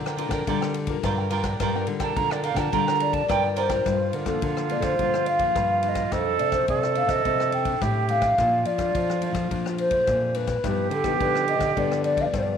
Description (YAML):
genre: samba and choro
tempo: 106 BPM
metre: 4/4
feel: straight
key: G minor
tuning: A4 = 440 Hz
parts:
  - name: cavaquinho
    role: accompaniment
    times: 0.0-3.9 s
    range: F4 to G5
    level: -30 LUFS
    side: right 10 dB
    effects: none
  - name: nylon-string guitar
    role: accompaniment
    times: 0.0-12.6 s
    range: F2 to Bb4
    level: -32 LUFS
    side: left 13 dB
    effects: none
  - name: nylon-string guitar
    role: bass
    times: 0.0-12.6 s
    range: F2 to F3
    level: -28 LUFS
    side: equal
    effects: none
  - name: swinging big-band drum kit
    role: drums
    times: 0.1-12.5 s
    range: kick drum, ride cymbal, rim click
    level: -32 LUFS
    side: left 4 dB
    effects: none
  - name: silver concert flute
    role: second line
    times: 2.0-12.6 s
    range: F4 to Bb5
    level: -27 LUFS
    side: right 10 dB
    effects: none
  - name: mellow hollow wooden flute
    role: melody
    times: 3.0-12.6 s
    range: G4 to G5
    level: -24 LUFS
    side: left 2 dB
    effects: none
room: moderate plate reverb, RT60 1.8 s, small room ambience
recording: 1960s-style stereo with parts hard left and right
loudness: -21 LUFS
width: side -8 dB against mid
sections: 0.0-3.9 A section; 3.9-12.6 B section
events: flute solo 0.0-3.9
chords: 0.0 Gm7; 6.1 F13; 8.4 Bbmaj7; 10.6 G7b13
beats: 0.48 1.04 | 1.60 2.17 2.73 3.30 | 3.86 4.43 4.99 5.56 | 6.12 6.69 7.25 7.82 | 8.38 8.95 9.51 10.08 | 10.64 11.21 11.78 12.34